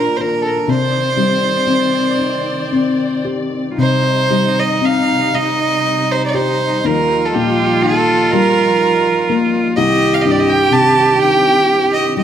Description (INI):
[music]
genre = celtic folk, Celtic slow air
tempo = 40 BPM (dotted quarters)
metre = 6/8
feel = uneven beats, rubato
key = C minor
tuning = A4 = 440 Hz
[part]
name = rich fiddle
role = melody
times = 0.0-12.2 s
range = G4 to A5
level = -16 LUFS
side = right 1 dB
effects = slapback echo
[part]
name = felt-muted upright piano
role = accompaniment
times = 0.0-12.2 s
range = C2 to G4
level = -18 LUFS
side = left 4 dB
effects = none
[part]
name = dark studio string section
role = sustained chords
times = 0.0-12.2 s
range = Bb2 to D5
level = -24 LUFS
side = equal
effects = none
[part]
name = rich cello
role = second line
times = 3.7-12.2 s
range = Eb4 to G4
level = -17 LUFS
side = right 4 dB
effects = none
[sound]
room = light reverb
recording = close, detailed microphones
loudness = -12 LUFS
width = side -9 dB against mid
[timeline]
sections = 0.0-3.8 A section; 3.8-12.2 B section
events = none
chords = 0.0 Bb; 0.7 Cmadd9; 3.8 Cm; 6.8 Ebadd9; 9.8 Cm